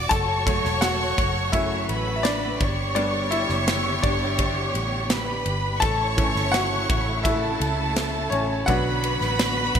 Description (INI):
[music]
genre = piano-driven pop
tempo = 84 BPM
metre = 4/4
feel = straight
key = unclear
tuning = A4 = 440 Hz
[part]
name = rich studio violin section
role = second line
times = 0.0-9.8 s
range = A4 to C#6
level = -26 LUFS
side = right 2 dB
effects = digital delay
[part]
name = bright upright piano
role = accompaniment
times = 0.0-9.8 s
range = E3 to A5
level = -26 LUFS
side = left 2 dB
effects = none
[part]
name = warm studio string section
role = sustained chords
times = 0.0-9.8 s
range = C#3 to G4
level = -32 LUFS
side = left 1 dB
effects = none
[part]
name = vintage muted fingered electric bass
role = bass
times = 0.0-9.8 s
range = E1 to C#2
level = -29 LUFS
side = equal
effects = none
[part]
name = modern studio drum kit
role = drums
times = 0.1-9.8 s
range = hi-hat, kick drum, ride cymbal, snare drum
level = -27 LUFS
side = equal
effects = gated reverb
[sound]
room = light reverb, studio reverb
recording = bright 1980s-style digital production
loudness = -21 LUFS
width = side -8 dB against mid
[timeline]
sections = 0.0-9.8 A section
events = upright piano solo 0.0-9.8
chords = 0.1 F#m; 2.6 G; 5.8 A; 8.7 Bm